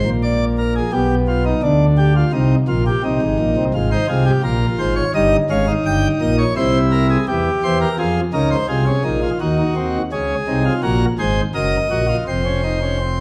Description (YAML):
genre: classical, baroque-style 3-part fugue for pipe organ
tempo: 85 BPM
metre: 4/4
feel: straight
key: F minor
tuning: A4 = 441 Hz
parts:
  - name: pipe organ, principal chorus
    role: solo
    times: 0.0-13.2 s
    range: F1 to G5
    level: -18 LUFS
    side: equal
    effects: none
room: wet recital hall reverb, RT60 1.5 s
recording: none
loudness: -18 LUFS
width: mono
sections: 0.0-9.4 A section; 9.4-13.2 B section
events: none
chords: 0.0 Bb; 0.9 G7/B; 2.3 Cm; 3.7 Fm/Ab; 5.1 Eb/G; 6.6 C7; 8.0 Fm; 9.4 Cm7b5; 12.3 F5